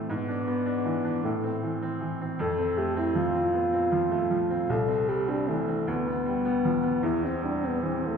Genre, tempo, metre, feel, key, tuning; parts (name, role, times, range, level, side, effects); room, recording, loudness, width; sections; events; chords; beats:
classical, romantic duo for French horn and grand piano; 52 BPM (dotted quarters); 6/8; rubato; C major; A4 = 439 Hz
bright baby grand piano; accompaniment; 0.0-8.2 s; C2 to D4; -29 LUFS; right 1 dB
dark French horn; melody; 0.1-8.2 s; A3 to A4; -27 LUFS; left 1 dB
wet scoring stage reverb, RT60 1.5 s; heard from further back in the room; -25 LUFS; side -6 dB against mid
0.0-8.2 A section
0.1 E7/G#; 1.2 Am; 2.4 F; 4.7 C; 5.9 G7/D; 7.0 C/E
| 0.08 1.23 | 2.39 3.54 | 4.70 5.87 | 7.04